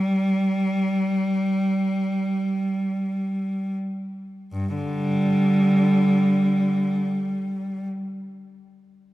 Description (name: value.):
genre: classical, free, expressive piece for unaccompanied cello.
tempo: free time.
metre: none.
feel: none.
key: unclear.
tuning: A4 = 435 Hz.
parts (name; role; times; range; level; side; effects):
rich cello; solo; 0.0-7.9 s; G2 to G3; -21 LUFS; equal; none.
room: wet church reverb, RT60 2.7 s.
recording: minimal, uncompressed stereo recording.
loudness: -20 LUFS.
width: side -16 dB against mid.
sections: 0.0-4.5 A section; 4.5-9.1 B section.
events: slowing down 0.0-4.5.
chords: none.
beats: free time.